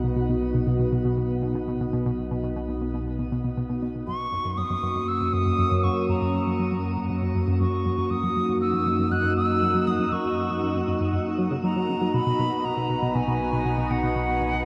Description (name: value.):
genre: ambient, sequencer-driven space music.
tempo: 119 BPM.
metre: 4/4.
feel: straight.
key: B major.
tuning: A4 = 439 Hz.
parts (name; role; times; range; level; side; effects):
sweeping resonant pad; sustained chords; 0.0-14.7 s; A#3 to F#4; -30 LUFS; equal; chorus.
tight sequenced synth; riff; 0.0-14.7 s; F#2 to F#3; -30 LUFS; equal; chorus, analog delay.
analog drone; bass; 0.0-14.7 s; B1 to F#2; -33 LUFS; equal; chorus.
hollow concert flute; melody; 4.1-14.7 s; F#5 to F#6; -30 LUFS; equal; analog delay.
room: wet shimmer reverb, RT60 8.6 s.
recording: dark, warm production, nothing above 10.7 kHz.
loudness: -25 LUFS.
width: mono.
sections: 0.0-14.7 A section.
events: none.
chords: 0.0 B; 4.1 F#; 12.1 B.